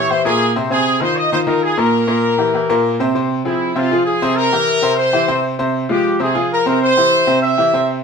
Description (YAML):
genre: latin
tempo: 196 BPM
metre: 4/4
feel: straight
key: F minor, F harmonic minor from 3.1 s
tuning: A4 = 440 Hz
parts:
  - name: clear horn section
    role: melody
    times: 0.0-7.9 s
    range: E4 to E5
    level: -16 LUFS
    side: left 1 dB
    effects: none
  - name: bright upright piano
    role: accompaniment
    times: 0.0-8.0 s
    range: Bb2 to C5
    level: -16 LUFS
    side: equal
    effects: none
room: wet studio reverb, RT60 0.7 s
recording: band playing live in one room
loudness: -13 LUFS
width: side -6 dB against mid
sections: 0.0-3.1 A section; 3.1-8.0 B section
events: none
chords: 0.1 C7b13; 0.7 Fm7; 1.9 Edim/Bb; 2.5 C7; 3.1 Fm; 4.4 C7; 5.6 Fm; 6.8 C